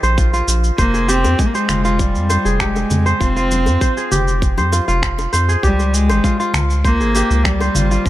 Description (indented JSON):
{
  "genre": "organic downtempo",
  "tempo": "99 BPM",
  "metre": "4/4",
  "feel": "straight",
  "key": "F minor",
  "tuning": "A4 = 439 Hz",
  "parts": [
    { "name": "rich cello", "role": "melody", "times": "0.0-8.1 s", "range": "Eb3 to C4", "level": "-20 LUFS", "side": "equal", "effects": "digital delay" },
    { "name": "kora", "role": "arpeggios", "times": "0.0-8.1 s", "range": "F4 to C5", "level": "-20 LUFS", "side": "right 1 dB", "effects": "digital delay" },
    { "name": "round analog bass", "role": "bass", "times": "0.0-8.1 s", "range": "F1 to F2", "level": "-17 LUFS", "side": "equal", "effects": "sidechain pumping" },
    { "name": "electronic shaker and finger snaps", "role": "drums", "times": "0.0-8.1 s", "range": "none", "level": "-24 LUFS", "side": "equal", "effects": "none" },
    { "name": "electronic kick drum", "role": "drums", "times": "0.2-8.1 s", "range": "none", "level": "-18 LUFS", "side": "equal", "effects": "none" },
    { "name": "bongos and congas", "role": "percussion", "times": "0.9-7.9 s", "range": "none", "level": "-25 LUFS", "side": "left 2 dB", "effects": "none" }
  ],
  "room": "light reverb",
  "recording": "none",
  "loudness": "-13 LUFS",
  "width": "side -15 dB against mid",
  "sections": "0.0-8.1 A section",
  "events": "none",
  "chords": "0.0 Bbsus4; 0.8 Fm; 5.6 Db6"
}